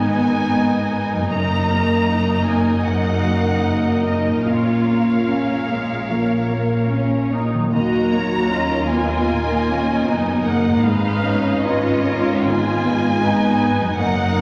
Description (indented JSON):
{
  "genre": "cinematic",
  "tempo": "76 BPM",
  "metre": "4/4",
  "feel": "uneven beats, rubato",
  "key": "Eb minor",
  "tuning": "A4 = 438 Hz",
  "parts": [
    { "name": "warm symphonic violin section", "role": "melody", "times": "0.0-14.4 s", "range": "Eb5 to Bb5", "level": "-28 LUFS", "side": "equal", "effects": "none" },
    { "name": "warm symphonic violin section", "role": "second line", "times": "0.0-14.4 s", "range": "Ab4 to Eb5", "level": "-31 LUFS", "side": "equal", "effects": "none" },
    { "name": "clear concert grand piano", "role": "accompaniment", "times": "0.0-14.4 s", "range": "Eb2 to Eb4", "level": "-27 LUFS", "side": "equal", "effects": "none" },
    { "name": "warm studio viola section", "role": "accompaniment", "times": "0.0-14.4 s", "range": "Ab3 to Gb4", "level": "-23 LUFS", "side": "equal", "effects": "none" },
    { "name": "concert harp", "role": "arpeggios", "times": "0.0-14.4 s", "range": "Gb2 to Bb5", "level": "-31 LUFS", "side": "equal", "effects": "none" },
    { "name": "warm studio double bass section", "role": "bass", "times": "0.0-14.4 s", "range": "Gb1 to Eb2", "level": "-29 LUFS", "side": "equal", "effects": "none" },
    { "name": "warm symphonic cello section", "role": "bass", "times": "0.0-14.4 s", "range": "Eb2 to Bb2", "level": "-28 LUFS", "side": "equal", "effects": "none" }
  ],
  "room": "wet recital hall reverb, RT60 1.6 s",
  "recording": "vinyl crackle",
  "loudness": "-19 LUFS",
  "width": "mono",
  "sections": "0.0-14.4 A section",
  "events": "none",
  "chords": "0.0 Abmadd9; 1.3 Ebm/Gb; 4.5 Bbm; 7.7 Ebm; 10.9 Abmadd9",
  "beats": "0.56 | 1.31 2.08 2.86 3.64 | 4.45 5.28 6.09 6.91 | 7.73 8.53 9.31 10.09 | 10.87 11.65 12.46 13.23 | 13.99"
}